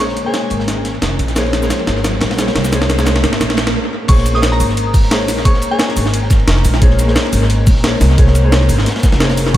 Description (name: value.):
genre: liquid drum and bass.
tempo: 176 BPM.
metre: 4/4.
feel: swing 54% on 16ths.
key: Bb minor.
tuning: A4 = 439 Hz.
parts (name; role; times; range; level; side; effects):
glassy synth bell; melody; 0.0-0.6, 4.1-6.1, 9.5-9.6 s; Ab5 to Eb6; -24 LUFS; equal; chorus, tremolo, tape echo.
felt-muted upright piano; accompaniment; 0.0-9.6 s; Eb3 to Db5; -20 LUFS; left 2 dB; low-pass filter, tape echo.
warm analog pad; sustained chords; 0.0-9.6 s; Ab3 to Bb4; -27 LUFS; equal; chorus, sidechain pumping.
upright bass; bass; 0.0-9.6 s; F1 to C2; -15 LUFS; equal; none.
breakbeat sampler-style drum kit; drums; 0.0-9.6 s; crash cymbal, hi-hat, shaker, snare drum; -18 LUFS; equal; dub echo.
crunchy breakbeat drum kit; drums; 0.0-9.6 s; hi-hat, ride cymbal, snare drum; -25 LUFS; equal; high-pass filter on cymbals, high-pass filter on hats, high-pass filter on snare, high-pass filter on room, dub echo.
riser; sound effects; 0.2-3.7 s; none; -25 LUFS; right 4 dB; none.
electronic kick drum; drums; 4.1-9.6 s; none; -11 LUFS; equal; overdrive.
room: light reverb.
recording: echo-heavy mix.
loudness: -11 LUFS.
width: side -13 dB against mid.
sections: 0.0-4.1 A section; 4.1-9.6 B section.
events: build-up 0.0-4.1; drum fill 0.0-3.7; riser 0.2-3.7; break 3.7-4.1; drop 4.1-9.6.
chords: 0.0 Bbm9.